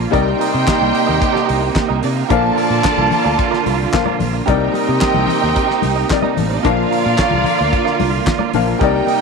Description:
disco; 111 BPM; 4/4; straight; A4 = 439 Hz
clean electric guitar; accompaniment; 0.0-9.2 s; F4 to Eb5; -25 LUFS; right 13 dB
clear grand piano; accompaniment; 0.0-9.2 s; Bb2 to F5; -21 LUFS; left 14 dB
clear studio string section; sustained chords; 0.0-9.2 s; C3 to F4; -21 LUFS; right 13 dB
fingered electric bass; bass; 0.0-9.0 s; A1 to C3; -20 LUFS; equal
warm symphonic violin section; second line; 0.1-9.2 s; G3 to A5; -21 LUFS; right 10 dB
warm horn section; stabs; 0.1-9.2 s; G3 to Eb5; -22 LUFS; left 15 dB
damped 70s drum kit; drums; 0.1-9.2 s; handclaps, hi-hat, kick drum, snare drum; -22 LUFS; left 1 dB
congas; percussion; 2.3-9.2 s; -25 LUFS; left 11 dB
light reverb, small room ambience; 1960s-style stereo with parts hard left and right; -13 LUFS; side -4 dB against mid
0.0-9.2 A section
0.1 Cm7; 2.3 Bb; 4.5 Cm7; 6.6 Bb

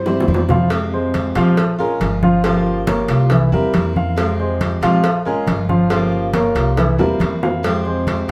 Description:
latin, Cuban son and guajira; 139 BPM; 4/4; straight; F harmonic minor; A4 = 440 Hz
dark baby grand piano; arpeggios; 0.0-8.2 s; E3 to F5; -20 LUFS; equal
upright bass; bass; 0.0-8.3 s; G1 to G2; -24 LUFS; equal
picked steel-string acoustic guitar; accompaniment; 0.1-8.3 s; C3 to G4; -26 LUFS; equal
bongos and cowbell; percussion; 0.1-8.3 s; -25 LUFS; equal
congas; percussion; 0.1-8.3 s; -24 LUFS; equal
wet studio reverb, RT60 0.6 s; heard from further back in the room; -17 LUFS; mono
0.7-8.3 A section
drum fill 0.1-0.7, 7.0-7.6
0.0 C; 0.7 Fmadd9; 1.6 Bbm7; 2.4 Gm7b5; 3.3 C7; 4.2 Fmadd9; 5.0 Bbm7; 5.9 Gm7b5; 6.8 C7; 7.6 Fmadd9

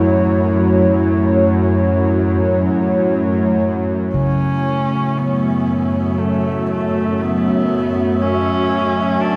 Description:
dark ambient drone; free time; F# minor; A4 = 438 Hz
dark analog pad; sustained chords; 0.0-9.4 s; A3 to C#5; -20 LUFS; equal; chorus
gamelan-type bossed gongs; arpeggios; 0.0-9.4 s; F#2 to C#3; -26 LUFS; equal; tape echo
bowed-like drone; drone; 0.0-9.4 s; F#2 to F#3; -21 LUFS; equal; built-in reverb
flickering grainy texture; texture; 0.0-9.4 s; C#5 to E5; -33 LUFS; equal; built-in reverb
taiko ensemble; percussion; 4.1-4.3 s; -35 LUFS; equal; low-pass filter on perc
rich horsehead fiddle; melody; 4.2-9.4 s; A3 to D4; -23 LUFS; equal; tape echo
wet huge ambient reverb, RT60 8.9 s; -17 LUFS; mono
0.0-4.1 A section; 4.1-9.4 B section
fade-in on drum 4.1-9.4
0.0 F#m

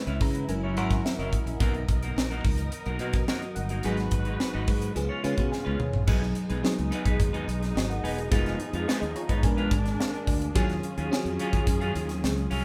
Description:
polished 1980s jazz-funk pop; 107 BPM; 4/4; straight; A4 = 440 Hz
FM electric piano with soft pad layer; accompaniment; 0.0-12.6 s; E#3 to A#5; -34 LUFS; equal; chorus, phaser
dark studio string section; sustained chords; 0.0-12.6 s; A#2 to B4; -39 LUFS; equal
clean electric guitar; riff; 0.1-12.6 s; F#3 to C#5; -38 LUFS; equal
modern bright fingered electric bass; bass; 0.1-12.6 s; E1 to C#3; -34 LUFS; equal
crisp fusion drum kit; drums; 0.1-12.6 s; crash cymbal, hi-hat, kick drum, snare drum, toms; -30 LUFS; equal
moderate studio reverb, RT60 0.7 s; band playing live in one room; -27 LUFS; mono
0.0-6.1 A section; 6.1-12.6 B section
FM electric piano fill 0.0-1.6, 5.0-6.1, 8.9-10.6; drum fill 5.5-6.1
0.5 F#7; 1.6 Bmaj7; 3.8 G#m7; 5.0 C#7; 6.1 B6; 8.3 Fm7b5; 9.4 A#7b9; 10.6 D#m11

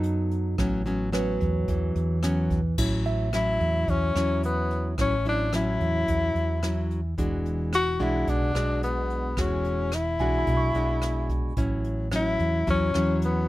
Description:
bossa nova; 109 BPM; 4/4; straight; A major; A4 = 440 Hz
barky tine electric piano; accompaniment; 0.0-11.6 s; D#4 to C#6; -36 LUFS; right 7 dB; overdrive
nylon-string guitar; accompaniment; 0.0-13.5 s; A2 to A4; -29 LUFS; left 1 dB
hollow-body short-scale fingered electric bass; bass; 0.0-13.5 s; E1 to F#2; -28 LUFS; right 1 dB
jazz brush drum kit; drums; 0.0-13.3 s; crash cymbal, hi-hat, kick drum, rim click; -32 LUFS; equal
breathy tenor saxophone; melody; 3.4-13.5 s; B3 to F#4; -27 LUFS; left 2 dB
little or no reverb; close, detailed microphones; -23 LUFS; side -17 dB against mid
0.0-2.8 A section; 2.8-13.5 B section
0.0 B7/F#; 0.6 A69; 2.8 A6; 7.2 E9; 11.6 A6

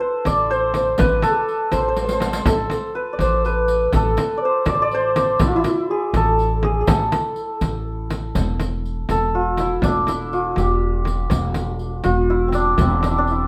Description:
Persian modal ensemble; 81 BPM (dotted quarters); 6/8; straight; A avaz esfahan, E dastgah shur from 8.4 s; A4 = 440 Hz
santur; melody; 0.0-13.5 s; C4 to D5; -24 LUFS; equal
mellow wooden-headed alto flute; second line; 0.0-7.9 s; E4 to D5; -25 LUFS; equal
upright bass; bass; 0.3-13.5 s; E1 to A1; -25 LUFS; equal
frame drum; percussion; 0.3-13.1 s; -26 LUFS; equal
riq; percussion; 0.3-13.3 s; -34 LUFS; equal
moderate studio reverb, RT60 0.6 s; -20 LUFS; mono
0.0-8.4 A section; 8.4-13.5 B section
drum fill 2.0-2.5

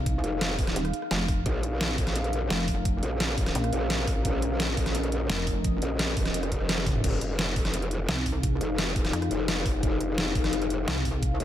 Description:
dark technical drum and bass; 172 BPM; 4/4; straight; F minor; A4 = 440 Hz
deep dark ambient pad; sustained chords; 0.0-11.4 s; Db4 to F5; -33 LUFS; left 2 dB; chorus, built-in reverb, sidechain pumping
pulsing pluck wobble bass; bass; 0.0-5.8, 8.1-11.4 s; Eb1 to F2; -28 LUFS; equal; chorus
dubstep drum kit; drums; 0.1-11.4 s; crash cymbal, hi-hat, rim click, snare drum, toms; -30 LUFS; equal; overdrive
electronic kick drum; drums; 0.1-11.3 s; -29 LUFS; equal
growl bass; bass; 0.2-11.4 s; F1 to Bb1; -29 LUFS; equal; chorus, overdrive
light reverb, digital ambience; -25 LUFS; side -11 dB against mid
0.0-11.4 A section
drum fill 6.8
0.0 Fm7; 1.5 Bbm; 7.0 Fm7

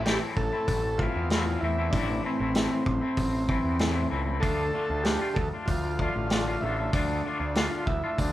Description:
psychedelic rock; 96 BPM; 4/4; straight; A minor; A4 = 440 Hz
overdriven combo organ; melody; 0.0-8.3 s; C4 to A4; -30 LUFS; right 1 dB
twangy electric guitar; riff; 0.0-8.3 s; A2 to F4; -31 LUFS; left 3 dB; harmonic tremolo
growling picked electric bass; bass; 0.0-8.3 s; A1 to E2; -31 LUFS; equal; overdrive
vintage drum kit; drums; 0.1-8.3 s; hi-hat, kick drum, snare drum; -30 LUFS; right 1 dB
light reverb; band playing live in one room; -25 LUFS; side -14 dB against mid
0.0-8.3 A section
0.0 Am; 4.4 Dm

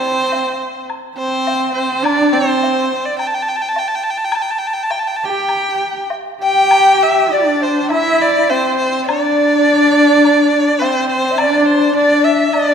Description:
chinese traditional, Chinese chamber ensemble; 104 BPM; 4/4; rubato; A4 = 439 Hz
rich erhu; melody; 0.0-12.7 s; C5 to A5; -16 LUFS; right 1 dB
clear horsehead fiddle; second line; 0.0-12.7 s; C4 to G4; -16 LUFS; right 1 dB
woodblock; percussion; 0.3-12.7 s; -27 LUFS; left 3 dB
bright large dizi; second line; 6.4-12.7 s; C5 to G5; -16 LUFS; left 3 dB
wet scoring stage reverb, RT60 2.0 s; minimal, uncompressed stereo recording; -12 LUFS; side -7 dB against mid
0.0-6.7 A section; 6.7-12.7 B section

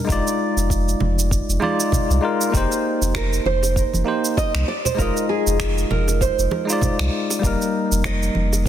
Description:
sunset chillout; 98 BPM; 4/4; swing 57% on 16ths; F dorian; A4 = 439 Hz
bell-like tine electric piano; accompaniment; 0.0-8.7 s; G3 to Eb5; -22 LUFS; moving between left 4 dB and right 4 dB; auto-pan, low-pass filter, ping-pong delay
warm sub bass; bass; 0.1-8.7 s; F1 to C2; -21 LUFS; equal
electronic cabasa and finger snaps; drums; 0.1-8.6 s; -27 LUFS; right 2 dB; soft clipping on snare
electronic kick drum; drums; 0.1-8.7 s; -24 LUFS; equal
congas and bongos; percussion; 1.0-8.6 s; -28 LUFS; right 3 dB
nylon-string guitar; melody; 3.2-8.6 s; Ab4 to Eb5; -24 LUFS; right 4 dB; digital delay
light reverb, digital ambience; dense, heavily limited modern master; -18 LUFS; side -10 dB against mid
0.0-8.7 A section
0.1 Bb7sus4/F (rootless); 2.5 Cm7/F; 4.7 Fm7; 7.4 Eb/F

